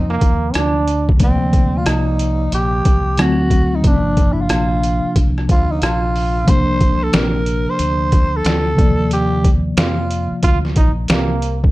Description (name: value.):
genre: hip hop, jazz-hop.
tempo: 91 BPM.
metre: 4/4.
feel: swing 64% on 16ths.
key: unclear.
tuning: A4 = 440 Hz.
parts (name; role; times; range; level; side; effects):
growling tenor saxophone; melody; 0.0-10.4 s; C4 to C5; -21 LUFS; right 1 dB; slapback echo.
mellow tine electric piano; accompaniment; 0.0-11.4 s; C3 to D5; -20 LUFS; left 1 dB; medium stereo tremolo.
deep dub fingered electric bass; bass; 0.0-11.7 s; G1 to F2; -20 LUFS; equal; none.
bright trombone; second line; 0.1-1.1, 10.4-11.6 s; Bb3 to F4; -20 LUFS; right 4 dB; none.
trip hop sampler-style drum kit; drums; 0.1-11.7 s; hi-hat, kick drum, rim click, snare drum; -16 LUFS; equal; overdrive.
room: light reverb.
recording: dark, warm production.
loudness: -13 LUFS.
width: side -18 dB against mid.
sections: 0.0-11.7 A section.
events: none.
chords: 0.0 Ebsus2; 1.2 Bbadd9; 3.2 D7; 3.8 Gm7; 6.5 Csus2; 8.8 Ebsus2.